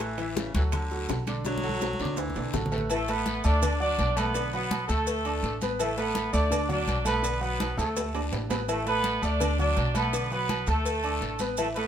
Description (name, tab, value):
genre	latin, salsa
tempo	166 BPM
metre	4/4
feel	straight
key	unclear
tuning	A4 = 440 Hz
part	clear baritone saxophone	second line	0.0-2.9 s	C#3 to F#3	-34 LUFS	left 2 dB	none
part	clear grand piano	accompaniment	0.0-11.9 s	D3 to D6	-32 LUFS	right 1 dB	none
part	upright bass	bass	0.0-11.9 s	A1 to D2	-30 LUFS	equal	none
part	bongos and cowbell	percussion	0.0-11.9 s	none	-36 LUFS	left 6 dB	none
part	congas	percussion	0.0-11.9 s	none	-36 LUFS	equal	none
part	guiro	percussion	0.0-11.9 s	none	-42 LUFS	left 5 dB	none
part	maracas	percussion	0.0-11.9 s	none	-41 LUFS	right 6 dB	none
part	timbales and agogo bells	percussion	0.0-11.9 s	none	-37 LUFS	right 6 dB	none
part	clear horn section	melody	2.9-11.9 s	A3 to D5	-29 LUFS	right 1 dB	none
room	moderate studio reverb, RT60 0.8 s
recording	minimal, uncompressed stereo recording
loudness	-25 LUFS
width	side -9 dB against mid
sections	0.0-2.9 A section; 2.9-11.9 B section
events	drum fill 1.5-2.9, 7.6-8.7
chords	0.0 Asus2; 0.7 Bm7; 2.2 D; 2.9 Asus2; 3.6 Bm7; 5.1 D5; 5.8 Asus2; 6.5 Bm7; 8.0 D5; 8.7 Asus2; 9.4 Bm7; 10.9 D5